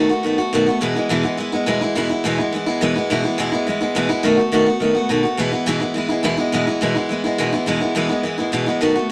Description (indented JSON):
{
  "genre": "rock",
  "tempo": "210 BPM",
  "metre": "4/4",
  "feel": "straight",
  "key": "E major",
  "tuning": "A4 = 440 Hz",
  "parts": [
    { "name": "picked steel-string acoustic guitar", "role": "solo", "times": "0.0-9.1 s", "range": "E2 to F#4", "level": "-19 LUFS", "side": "equal", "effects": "none" }
  ],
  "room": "moderate studio reverb, RT60 0.5 s",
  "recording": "none",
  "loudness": "-19 LUFS",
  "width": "mono",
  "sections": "0.0-6.5 A section; 6.5-9.1 B section",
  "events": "none",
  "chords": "0.0 B7; 0.8 E; 4.2 B7; 5.4 E",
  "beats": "0.24 0.53 | 0.81 1.10 1.39 1.67 | 1.96 2.25 2.53 2.82 | 3.10 3.39 3.67 3.96 | 4.24 4.53 4.81 5.10 | 5.38 5.67 5.95 6.24 | 6.52 6.81 7.09 7.38 | 7.67 7.95 8.24 8.53 | 8.81 9.10"
}